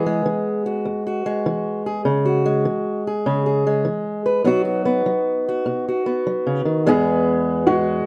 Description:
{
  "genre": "acoustic folk duo or small band",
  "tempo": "50 BPM (dotted quarters)",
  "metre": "6/8",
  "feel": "straight",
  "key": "E major",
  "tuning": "A4 = 443 Hz",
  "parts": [
    { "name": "fingerpicked acoustic archtop guitar", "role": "accompaniment", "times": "0.0-8.1 s", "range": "E2 to B4", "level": "-21 LUFS", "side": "equal", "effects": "none" },
    { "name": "felt-muted upright piano", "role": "second line", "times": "6.9-8.1 s", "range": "F#4 to G#4", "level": "-22 LUFS", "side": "equal", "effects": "none" }
  ],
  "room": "moderate studio reverb, RT60 0.8 s",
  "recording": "dark, warm production",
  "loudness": "-21 LUFS",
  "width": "mono",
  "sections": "0.0-6.9 A section; 6.9-8.1 B section",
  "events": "none",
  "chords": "0.0 E; 2.1 C#m; 4.5 B; 6.9 E",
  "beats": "0.84 | 2.05 3.26 | 4.47 5.67 | 6.88"
}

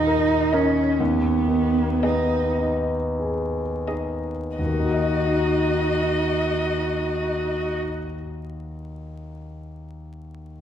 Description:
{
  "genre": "classical, slow romantic movement for piano quartet",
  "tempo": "28-45 BPM (dotted quarters)",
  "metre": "6/8",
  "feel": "rubato",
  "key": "Eb minor",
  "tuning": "A4 = 440 Hz",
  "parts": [
    { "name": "rich cello", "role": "second line", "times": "0.0-7.8 s", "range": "Cb4 to Eb4", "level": "-24 LUFS", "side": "right 3 dB", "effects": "none" },
    { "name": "clear concert grand piano", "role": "accompaniment", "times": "0.0-10.6 s", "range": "Eb2 to Eb5", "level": "-25 LUFS", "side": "left 1 dB", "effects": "none" },
    { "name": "warm violin", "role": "melody", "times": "0.5-7.8 s", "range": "Eb5", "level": "-30 LUFS", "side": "left 4 dB", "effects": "none" },
    { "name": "warm viola", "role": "accompaniment", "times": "0.5-7.8 s", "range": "Gb4 to Bb4", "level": "-28 LUFS", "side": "equal", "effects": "none" }
  ],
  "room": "wet recital hall reverb, RT60 1.6 s",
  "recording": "heard from further back in the room, vinyl crackle",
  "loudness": "-20 LUFS",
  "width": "side -9 dB against mid",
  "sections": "0.0-4.6 A section; 4.6-8.5 B section",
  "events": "slowing down 0.0-4.6",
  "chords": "0.0 Eb5; 1.0 Abm/Eb; 4.6 Ebm",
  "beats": "| 0.99 2.58 | 4.58 6.55"
}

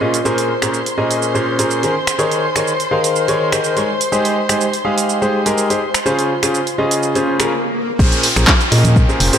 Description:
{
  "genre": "piano house",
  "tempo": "124 BPM",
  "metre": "4/4",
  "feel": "swing 53% on 16ths",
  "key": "Bb dorian",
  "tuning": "A4 = 441 Hz",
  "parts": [
    { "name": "rich chamber violin section", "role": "sustained chords", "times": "0.0-9.4 s", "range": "F4 to C6", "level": "-23 LUFS", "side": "left 1 dB", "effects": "vintage 12-bit sampler grit, sidechain pumping" },
    { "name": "bright concert grand piano", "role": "riff", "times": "0.0-9.4 s", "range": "Bb2 to F5", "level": "-16 LUFS", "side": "equal", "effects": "sidechain pumping, dub echo" },
    { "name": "punchy analog drum machine", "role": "drums", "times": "0.1-9.4 s", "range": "crash cymbal, finger snaps, handclaps, hi-hat, shaker", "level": "-19 LUFS", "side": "right 2 dB", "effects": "none" },
    { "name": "swell and downlifter", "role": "sound effects", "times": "7.2-9.4 s", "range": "none", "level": "-21 LUFS", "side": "equal", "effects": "none" },
    { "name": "organ-like FM bass", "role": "bass", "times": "8.0-9.3 s", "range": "F1 to Bb2", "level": "-14 LUFS", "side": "equal", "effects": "sidechain pumping" },
    { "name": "electronic kick drum", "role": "drums", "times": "8.0-9.1 s", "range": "none", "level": "-13 LUFS", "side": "equal", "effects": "overdrive" },
    { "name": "tambourine and congas", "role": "percussion", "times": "8.0-9.4 s", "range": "none", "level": "-25 LUFS", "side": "right 2 dB", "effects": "none" }
  ],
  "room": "moderate lush hall reverb, RT60 2.1 s",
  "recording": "dark, warm production",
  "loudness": "-13 LUFS",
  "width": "side -8 dB against mid",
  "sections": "0.0-8.0 A section; 8.0-9.4 B section",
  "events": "swell 7.2-8.0; stop 7.5-8.0; drop 8.0-9.4",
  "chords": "0.3 Bbm9; 1.9 Eb7sus4; 3.9 Abmaj7; 5.8 Dbmaj7; 8.0 Bbm9",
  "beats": "| 0.25 0.73 1.22 1.70 | 2.19 2.67 3.15 3.64 | 4.12 4.61 5.09 5.57 | 6.06 6.54 7.03 7.51 | 7.99 8.48 8.96"
}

